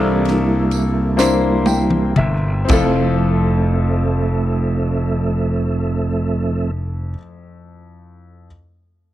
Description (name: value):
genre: slow gospel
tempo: 37-46 BPM (dotted quarters)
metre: 6/8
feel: straight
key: F major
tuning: A4 = 440 Hz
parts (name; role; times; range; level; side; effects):
- warm grand piano; accompaniment; 0.0-8.5 s; F2 to G5; -21 LUFS; left 4 dB; none
- mellow tonewheel organ; sustained chords; 0.0-6.7 s; E3 to E5; -21 LUFS; right 3 dB; fast rotary speaker, chorus vibrato
- gritty slap bass; bass; 0.0-7.1 s; F1 to C2; -19 LUFS; equal; overdrive
- crisp fusion drum kit; drums; 0.3-3.0 s; crash cymbal, kick drum, ride cymbal, snare drum, toms; -20 LUFS; equal; none
- tambourine; percussion; 0.7-3.2 s; none; -30 LUFS; right 13 dB; none
room: small room ambience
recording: dry, close 1970s-style studio recording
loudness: -15 LUFS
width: side -13 dB against mid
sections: 0.0-2.7 A section; 2.7-6.0 B section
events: slowing down 0.0-2.7; drum fill 1.2-2.7; grand piano fill 1.2-2.7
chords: 0.0 C13; 2.7 Fmaj7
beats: 1.18 | 2.70 4.33